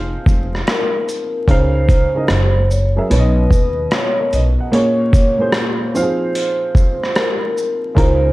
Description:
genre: lo-fi hip hop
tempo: 74 BPM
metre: 4/4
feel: swing 66% on 16ths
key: unclear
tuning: A4 = 439 Hz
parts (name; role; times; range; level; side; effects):
- dark upright piano; accompaniment; 0.0-8.3 s; Bb2 to Gb5; -20 LUFS; right 1 dB; cassette tape
- upright bass; bass; 0.0-8.3 s; F1 to Eb2; -16 LUFS; equal; none
- boom bap sampler-style drum kit; drums; 0.3-8.2 s; hi-hat, kick drum, rim click, shaker; -16 LUFS; equal; none
- vibraphone with soft mallets; melody; 0.7-8.3 s; Bb4 to Eb5; -20 LUFS; equal; none
room: small room ambience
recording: vinyl crackle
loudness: -13 LUFS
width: side -18 dB against mid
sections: 0.0-8.0 A section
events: none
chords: 0.0 Fm7; 1.5 Db6; 2.3 Gb9; 3.1 Cbadd9; 4.7 Bbm9; 5.9 Fm7

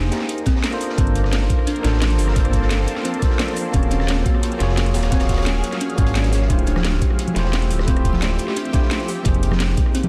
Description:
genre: liquid drum and bass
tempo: 174 BPM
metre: 4/4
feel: straight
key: D minor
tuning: A4 = 440 Hz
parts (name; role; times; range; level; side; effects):
- bell-like tine electric piano; accompaniment; 0.0-10.1 s; A3 to Db5; -28 LUFS; equal; dub echo
- shimmering ambient pad; sustained chords; 0.0-10.1 s; F3 to F5; -31 LUFS; equal; chorus, built-in reverb, phaser, sidechain pumping
- thumb-piano-like synth pluck; arpeggios; 0.0-10.0 s; C4 to D5; -31 LUFS; equal; chorus, tape echo
- dark detuned saw bass; bass; 0.0-9.8 s; D1 to A1; -22 LUFS; equal; none
- crunchy breakbeat drum kit; drums; 0.1-10.0 s; hi-hat, snare drum; -36 LUFS; equal; high-pass filter on hats, small room ambience, high-pass filter on snare, high-pass filter on room
- garage drum kit; drums; 0.1-10.1 s; hi-hat, rim click, snare drum; -30 LUFS; equal; small room ambience
- electronic kick drum; drums; 0.5-9.8 s; none; -22 LUFS; equal; small room ambience
- swell; sound effects; 5.9-6.5 s; none; -40 LUFS; equal; none
- congas; percussion; 6.8-10.1 s; none; -28 LUFS; equal; none
room: light reverb, small room ambience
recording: dense, heavily limited modern master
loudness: -19 LUFS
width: mono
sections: 0.0-10.1 A section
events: none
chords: 0.0 Fm11; 0.8 Gm11; 3.7 Ebm11; 6.5 Dm11; 9.1 Fm11

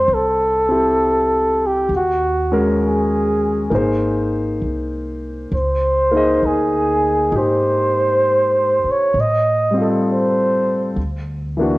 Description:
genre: jazz ballad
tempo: 66 BPM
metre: 4/4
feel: swing 67% on 8ths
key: unclear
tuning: A4 = 440 Hz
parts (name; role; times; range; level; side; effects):
- mellow flugelhorn; melody; 0.0-11.0 s; Gb4 to Eb5; -16 LUFS; right 1 dB; cassette tape
- warm concert grand piano; accompaniment; 0.0-11.8 s; E3 to Eb5; -20 LUFS; left 1 dB; cassette tape
- upright bass; bass; 0.0-11.8 s; Ab1 to A2; -25 LUFS; equal; none
room: wet spring reverb, RT60 1.4 s, small room ambience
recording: home recording on cassette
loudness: -15 LUFS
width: side -20 dB against mid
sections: 0.0-11.8 A section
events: none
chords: 0.0 Fadd9; 1.9 Ebm7; 3.7 Abadd9; 5.5 Dbsus2; 9.1 F9/A; 11.0 D

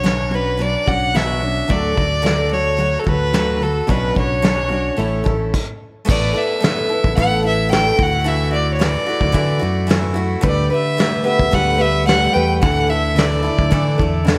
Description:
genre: folk rock and heartland rock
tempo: 110 BPM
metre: 4/4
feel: straight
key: D major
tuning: A4 = 439 Hz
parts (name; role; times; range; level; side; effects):
- clear fiddle; melody; 0.0-14.3 s; A4 to G5; -22 LUFS; equal; none
- picked steel-string acoustic guitar; accompaniment; 0.0-14.4 s; B2 to B4; -24 LUFS; equal; slapback echo
- electric guitar at the edge of break-up; riff; 0.0-5.5, 10.4-14.4 s; B2 to A4; -27 LUFS; equal; none
- fingered electric bass; bass; 0.0-14.4 s; A1 to D3; -24 LUFS; equal; none
- soft brush drum kit; drums; 0.0-14.4 s; crash cymbal, hi-hat, kick drum, snare drum; -22 LUFS; equal; none
room: moderate lush hall reverb, RT60 1.6 s, studio reverb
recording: big arena sound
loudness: -17 LUFS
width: mono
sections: 0.0-6.1 A section; 6.1-14.4 B section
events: stop 5.5-6.1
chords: 0.0 Bmadd9; 1.7 D; 3.9 Bmadd9; 5.0 A; 6.1 Asus2; 8.0 Dadd9; 10.4 Gadd9/D; 12.6 Dsus2

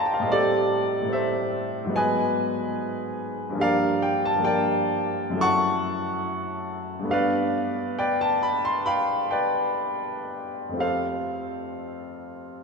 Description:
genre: classical, impressionist solo piano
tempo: 56-75 BPM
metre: 4/4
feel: rubato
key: unclear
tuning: A4 = 440 Hz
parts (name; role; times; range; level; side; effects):
- warm baby grand piano; solo; 0.0-12.6 s; F2 to Db6; -23 LUFS; equal; none
room: wet church reverb, RT60 3.7 s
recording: recorded in a church or concert hall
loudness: -22 LUFS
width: side -4 dB against mid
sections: 0.0-12.6 A section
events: none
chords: 0.3 Am7; 2.0 Abm7; 3.6 Gm7; 5.4 Gbm7; 7.1 G9; 10.8 Fadd9

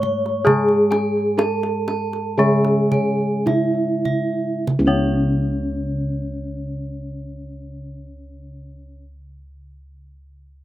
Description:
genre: Javanese gamelan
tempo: 48-70 BPM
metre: 4/4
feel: straight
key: unclear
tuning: A4 = 441 Hz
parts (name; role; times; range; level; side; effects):
- gamelan-type bronze metallophone; melody; 0.0-9.0 s; C#4 to C#5; -22 LUFS; right 1 dB; slapback echo
- gamelan-type bronze metallophone; accompaniment; 0.0-9.0 s; C#3 to A3; -25 LUFS; left 1 dB; none
- gamelan-type bossed gongs; arpeggios; 0.0-9.0 s; C#5 to A5; -31 LUFS; left 4 dB; slapback echo
- gamelan-type bronze metallophone; arpeggios; 0.0-9.0 s; C#5 to C#6; -31 LUFS; right 3 dB; slapback echo
- gamelan-type bossed gongs; bass; 0.0-9.0 s; C#2 to G#4; -24 LUFS; equal; none
- kendang; percussion; 0.0-5.3 s; none; -25 LUFS; right 2 dB; none
room: little or no reverb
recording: recorded outdoors, with no room sound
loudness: -17 LUFS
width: side -14 dB against mid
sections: 0.0-4.7 A section; 4.7-9.7 B section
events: slowing down 0.0-4.7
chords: none

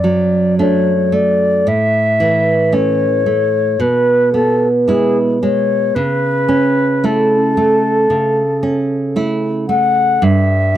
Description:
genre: romantic duo for flute and classical guitar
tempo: 56 BPM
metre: 4/4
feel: rubato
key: unclear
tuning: A4 = 435 Hz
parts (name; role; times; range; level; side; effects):
- mellow concert flute; melody; 0.0-10.8 s; G#4 to F#5; -15 LUFS; left 2 dB; none
- nylon-string guitar; accompaniment; 0.0-10.8 s; F#2 to E4; -14 LUFS; right 2 dB; none
room: light reverb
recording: dry, close 1970s-style studio recording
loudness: -12 LUFS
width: side -12 dB against mid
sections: 0.0-10.8 A section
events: none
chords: 0.0 D/F#; 1.7 A; 3.8 E/B; 6.0 A/C#; 10.2 A7(no3)/G (rootless)

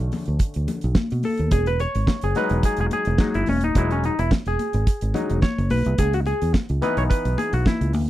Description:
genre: disco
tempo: 108 BPM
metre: 4/4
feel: straight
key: E major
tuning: A4 = 440 Hz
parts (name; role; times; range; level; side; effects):
- overdriven clav; accompaniment; 0.0-8.1 s; D3 to C#5; -25 LUFS; left 1 dB; phaser
- fingered electric bass; bass; 0.0-8.1 s; D#1 to B2; -22 LUFS; right 1 dB; none
- damped 70s drum kit; drums; 0.1-8.1 s; hi-hat, kick drum, snare drum; -20 LUFS; right 1 dB; none
- congas; percussion; 0.1-8.1 s; none; -28 LUFS; left 3 dB; none
room: little or no reverb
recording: dry, close 1970s-style studio recording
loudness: -19 LUFS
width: side -14 dB against mid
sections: 0.0-8.1 A section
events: clav solo 0.0-8.1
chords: 0.0 Bm9; 1.5 Emaj7; 6.0 C#m7

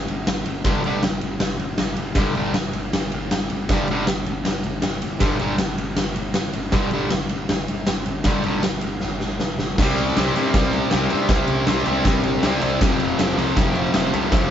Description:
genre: garage rock duo or trio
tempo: 158 BPM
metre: 4/4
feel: straight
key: unclear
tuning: A4 = 445 Hz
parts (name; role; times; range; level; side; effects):
- fuzz picked electric bass; bass; 0.0-14.5 s; F1 to G2; -28 LUFS; equal; overdrive
- oversized low-tuned drum kit; drums; 0.1-14.4 s; crash cymbal, kick drum, ride cymbal, snare drum; -22 LUFS; equal; none
- fuzz guitar; riff; 0.6-14.5 s; F2 to C4; -21 LUFS; equal; distortion
room: light reverb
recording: band playing live in one room, nothing above 7.6 kHz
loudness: -19 LUFS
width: side -10 dB against mid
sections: 0.0-9.8 A section; 9.8-14.5 B section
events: drum fill 9.0-9.8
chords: 0.0 G5; 9.8 C5; 12.8 F5

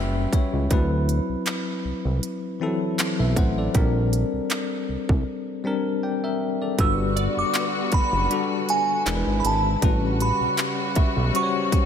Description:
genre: contemporary R&B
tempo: 79 BPM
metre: 4/4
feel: swing 54% on 16ths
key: G major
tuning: A4 = 439 Hz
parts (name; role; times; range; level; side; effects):
- bell-like tine electric piano; accompaniment; 0.0-11.9 s; E3 to G5; -26 LUFS; left 4 dB; fast stereo tremolo
- fat analog bass; bass; 0.0-11.3 s; E1 to D2; -24 LUFS; right 1 dB; none
- trap drum kit; drums; 0.3-11.9 s; handclaps, hi-hat, kick drum; -24 LUFS; right 1 dB; none
- glassy synth bell; melody; 6.8-11.9 s; Ab5 to E6; -25 LUFS; right 2 dB; chorus, ping-pong delay
- rich studio string section; sustained chords; 6.8-11.9 s; C#3 to F#4; -30 LUFS; left 1 dB; none
- glassy wavetable pluck; texture; 7.2-11.9 s; D5 to E5; -35 LUFS; equal; chorus, ping-pong delay
room: moderate plate reverb, RT60 2.8 s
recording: dreamy mix soaked in reverb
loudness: -21 LUFS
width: side -8 dB against mid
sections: 0.0-6.8 A section; 6.8-11.9 B section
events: tine electric piano fill 0.0-0.7; break 5.3-6.8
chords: 0.0 A13 (rootless); 0.7 D13; 3.7 Bb69; 6.8 Gmaj7; 9.1 E7; 9.8 A13

